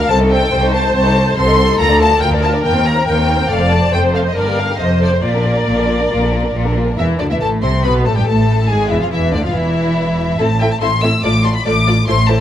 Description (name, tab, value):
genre	quick classical-period movement for string orchestra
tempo	141 BPM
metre	4/4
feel	straight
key	Bb major, A minor from 7.0 s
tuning	A4 = 443 Hz
part	warm studio violin section	melody	0.0-12.4 s	Bb4 to E6	-18 LUFS	left 3 dB	none
part	rich studio viola section	accompaniment	0.0-12.4 s	D3 to D5	-19 LUFS	equal	none
part	dark studio double bass section	bass	0.0-12.4 s	E1 to Eb2	-18 LUFS	right 1 dB	none
part	warm studio cello section	bass	0.0-12.4 s	C2 to C3	-18 LUFS	equal	none
part	warm studio violin section	second line	0.1-12.4 s	A3 to E5	-20 LUFS	left 2 dB	none
room	moderate recital hall reverb, RT60 1.8 s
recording	close, detailed microphones, vinyl crackle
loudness	-12 LUFS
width	side -10 dB against mid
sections	0.0-7.0 A section; 7.0-12.4 B section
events	none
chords	0.1 Adim/C; 1.8 Bb/D; 2.6 Cm7/Eb; 3.5 F; 4.4 Gm; 4.8 F7; 5.2 Bb; 7.0 Am; 7.8 Gadd9/A; 8.7 E7; 10.4 Am; 11.2 Dm/A